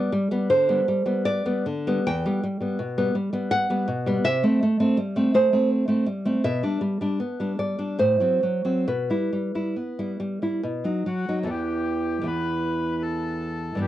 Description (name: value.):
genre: romantic duo for bandoneon and classical guitar.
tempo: 64-85 BPM.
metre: 3/4.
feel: rubato.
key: E minor.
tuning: A4 = 439 Hz.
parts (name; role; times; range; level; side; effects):
nylon-string guitar; accompaniment; 0.0-13.9 s; E2 to G5; -22 LUFS; equal; cassette tape.
bandoneon; melody; 11.1-13.9 s; F#4 to B4; -32 LUFS; left 4 dB; cassette tape, tape echo.
room: light reverb.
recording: home recording on cassette.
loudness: -22 LUFS.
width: side -13 dB against mid.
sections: 0.0-11.5 A section; 11.5-13.9 B section.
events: none.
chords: 0.0 G; 2.1 Em (rootless); 4.3 C6; 6.4 G/B; 8.0 F#dim/A; 8.9 Em/B; 10.6 B; 11.5 Em.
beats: 0.49 1.26 | 2.07 2.79 3.51 | 4.25 4.98 5.70 | 6.43 7.19 7.99 | 8.87 9.77 10.62 | 11.49 12.27 13.03 | 13.80.